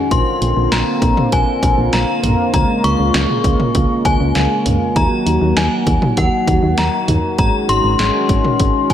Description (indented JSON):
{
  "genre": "synth-pop",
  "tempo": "99 BPM",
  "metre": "4/4",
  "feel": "straight",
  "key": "Eb dorian",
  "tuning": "A4 = 445 Hz",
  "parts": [
    { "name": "synth chime", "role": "melody", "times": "0.0-8.9 s", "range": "Gb5 to Db6", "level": "-19 LUFS", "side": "left 3 dB", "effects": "ensemble chorus, tremolo, analog delay, shimmer reverb" },
    { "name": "chorused pulse-width pad", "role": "sustained chords", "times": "0.0-8.9 s", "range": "Db3 to Gb4", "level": "-18 LUFS", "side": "equal", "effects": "shimmer reverb" },
    { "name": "solid FM bass", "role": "bass", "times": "0.1-8.9 s", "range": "Ab1 to Eb2", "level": "-18 LUFS", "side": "equal", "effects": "none" },
    { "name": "punchy analog drum machine", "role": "drums", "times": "0.1-8.9 s", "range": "hi-hat, kick drum, snare drum, toms", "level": "-18 LUFS", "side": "equal", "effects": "none" }
  ],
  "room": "wet plate reverb, RT60 1.7 s",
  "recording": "dreamy mix soaked in reverb",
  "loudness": "-13 LUFS",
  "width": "side -10 dB against mid",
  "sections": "0.0-8.9 A section",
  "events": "none",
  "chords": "0.1 Bbadd9; 2.5 Db6; 5.0 Ebm; 7.4 Ab7sus4"
}